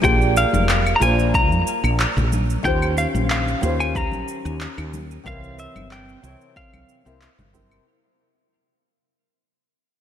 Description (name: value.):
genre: sunset chillout.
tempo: 92 BPM.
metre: 4/4.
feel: swing 53% on 16ths.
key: unclear.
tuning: A4 = 436 Hz.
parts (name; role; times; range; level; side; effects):
semi-hollow electric guitar; melody; 0.0-7.5 s; E5 to Bb5; -22 LUFS; left 1 dB; ping-pong delay, slapback echo.
nylon-string guitar; accompaniment; 0.0-7.8 s; C3 to G5; -25 LUFS; left 1 dB; auto-pan, slapback echo.
woody fretless electric bass; bass; 0.0-7.8 s; F1 to F2; -22 LUFS; equal; none.
electronic kick drum; drums; 0.0-7.7 s; none; -24 LUFS; equal; none.
electronic shaker, handclaps and claves; drums; 0.0-7.8 s; none; -27 LUFS; equal; slapback echo.
congas; percussion; 0.5-7.7 s; none; -32 LUFS; left 1 dB; none.
room: moderate lush hall reverb, RT60 3.0 s.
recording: big arena sound.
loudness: -17 LUFS.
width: side -10 dB against mid.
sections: 0.0-7.9 A section.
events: fade-out 0.0-7.9.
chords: 0.0 Bb13; 2.6 Eb13; 5.3 C7b9.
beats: | 0.04 0.69 1.34 2.00 | 2.65 3.30 3.95 4.60 | 5.26 5.91 6.56 7.21.